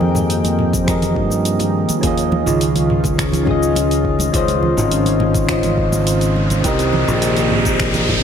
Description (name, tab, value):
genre	sunset chillout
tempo	104 BPM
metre	4/4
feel	straight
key	F minor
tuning	A4 = 440 Hz
part	soft electric-piano-like synth keys	accompaniment	0.0-8.2 s	C3 to Eb5	-19 LUFS	moving between left 7 dB and right 7 dB	chorus, auto-pan, vintage 12-bit sampler grit, digital delay
part	airy breathy pad	sustained chords	0.0-8.2 s	Eb3 to G5	-22 LUFS	equal	chorus
part	fingered electric bass	bass	0.0-8.2 s	Ab1 to G2	-19 LUFS	equal	none
part	congas	percussion	0.0-8.2 s	none	-26 LUFS	right 4 dB	none
part	smooth R&B drum kit	drums	0.2-8.2 s	cabasa, finger snaps, hi-hat, toms	-24 LUFS	left 1 dB	overdrive
part	electronic kick drum	drums	0.7-8.2 s	none	-23 LUFS	equal	overdrive
part	riser	sound effects	5.4-8.2 s	none	-23 LUFS	equal	none
room	moderate concert hall reverb, RT60 1.9 s, digital ambience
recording	none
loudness	-14 LUFS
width	side -8 dB against mid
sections	0.0-8.2 A section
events	riser 5.4-8.2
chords	0.0 Fm11; 2.0 Eb9sus4; 4.3 Dbmaj9; 6.6 Cm7